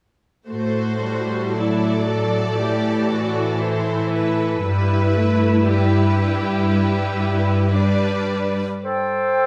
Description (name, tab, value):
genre	cinematic, emotional film score for orchestra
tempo	58 BPM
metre	4/4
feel	rubato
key	unclear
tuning	A4 = 441 Hz
part	clear symphonic violin section	second line	0.5-8.6 s	G4 to D5	-27 LUFS	equal	none
part	rich symphonic viola section	accompaniment	0.5-8.6 s	E3 to A4	-24 LUFS	equal	none
part	clear symphonic cello section	bass	0.5-8.6 s	G2 to A2	-24 LUFS	equal	none
part	mellow clarinet	second line	8.8-9.5 s	C5	-22 LUFS	equal	none
part	mellow oboe	second line	8.8-9.5 s	A4	-28 LUFS	equal	none
part	silver concert flute	second line	8.9-9.5 s	G5	-29 LUFS	equal	none
room	moderate scoring stage reverb, RT60 1.6 s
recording	none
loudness	-20 LUFS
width	mono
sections	0.5-8.8 A section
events	none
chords	0.5 Am7; 4.6 G; 8.8 Am7